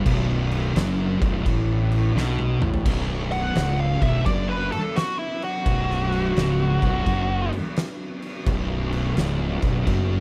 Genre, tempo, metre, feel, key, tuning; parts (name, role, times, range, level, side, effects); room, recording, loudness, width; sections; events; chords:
stoner and doom metal; 86 BPM; 4/4; swing 66% on 8ths; B minor; A4 = 441 Hz
string machine, violins; sustained chords; 0.0-10.2 s; F#3 to D4; -39 LUFS; equal
thick fuzz guitar; riff; 0.0-10.2 s; B1 to B2; -29 LUFS; equal; distortion
thick fuzz guitar; riff; 0.0-10.2 s; B1 to B2; -30 LUFS; equal; distortion
fuzz fingered electric bass; bass; 0.0-10.2 s; B0 to B1; -29 LUFS; equal; overdrive
oversized low-tuned drum kit; drums; 0.1-10.1 s; crash cymbal, kick drum, snare drum, toms; -29 LUFS; equal
fuzz lead guitar; melody; 3.3-7.5 s; E4 to F#5; -29 LUFS; equal; wah, distortion, slapback echo
small room ambience; -23 LUFS; mono
0.0-2.9 A section; 2.9-10.2 B section
drum fill 2.2-2.9; lead electric guitar solo 2.9-10.2
0.0 Bm